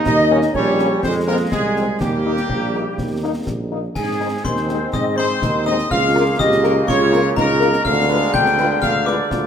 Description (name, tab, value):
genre	military-style march for wind band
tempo	123 BPM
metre	2/4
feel	straight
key	Ab major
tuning	A4 = 439 Hz
part	bright trombone section	sustained chords	0.0-9.5 s	Db3 to Eb4	-26 LUFS	right 1 dB	none
part	dark trumpet section	melody	0.1-9.5 s	G4 to G5	-24 LUFS	right 1 dB	none
part	clear euphonium	second line	0.1-9.5 s	G3 to G4	-24 LUFS	right 2 dB	none
part	hollow small flute group	second line	0.1-9.5 s	G4 to G5	-24 LUFS	left 4 dB	none
part	mellow tuba	bass	0.1-9.5 s	Bb1 to Ab2	-21 LUFS	right 2 dB	none
part	concert snare drum, clash cymbals and concert bass drum	drums	0.1-9.5 s	none	-27 LUFS	left 2 dB	none
part	warm French horn section	accompaniment	0.3-9.2 s	F3 to B4	-26 LUFS	left 5 dB	none
part	glockenspiel with hard plastic mallets	second line	4.0-9.5 s	Ab5 to G6	-24 LUFS	left 5 dB	none
room	wet large studio reverb, RT60 1.4 s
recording	none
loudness	-15 LUFS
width	side -8 dB against mid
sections	0.0-4.0 A section; 4.0-9.5 B section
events	none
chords	0.1 Eb7; 1.0 Fm; 2.0 Eb; 4.0 Ab; 5.9 Bbm/Db; 7.9 Ddim7